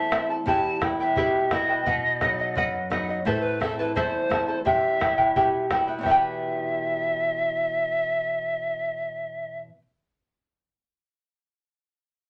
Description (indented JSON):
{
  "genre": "andean folk, Andean ensemble",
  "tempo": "86 BPM",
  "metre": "2/4",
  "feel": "straight",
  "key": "E harmonic minor",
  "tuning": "A4 = 437 Hz",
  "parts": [
    { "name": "bright reedy polished pan flute", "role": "melody", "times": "0.0-9.6 s", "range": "A4 to A5", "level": "-28 LUFS", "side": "equal", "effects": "none" },
    { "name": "charango", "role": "accompaniment", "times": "0.0-9.8 s", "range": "E4 to A5", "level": "-27 LUFS", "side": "equal", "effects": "none" },
    { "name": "flamenco guitar", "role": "accompaniment", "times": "0.0-9.8 s", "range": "E2 to B4", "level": "-35 LUFS", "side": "equal", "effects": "none" },
    { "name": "bombo", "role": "percussion", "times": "0.1-6.4 s", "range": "none", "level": "-34 LUFS", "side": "equal", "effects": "none" }
  ],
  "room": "wet studio ambience, RT60 0.5 s",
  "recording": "none",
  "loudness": "-25 LUFS",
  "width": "mono",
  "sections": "0.0-6.0 A section; 6.0-8.8 B section",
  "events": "none",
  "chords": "0.5 Em; 1.9 B; 3.3 Am; 4.7 Em",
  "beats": "| 0.47 1.17 | 1.87 2.56 | 3.26 3.96 | 4.66 5.35 | 6.05 6.75 | 7.44 8.14"
}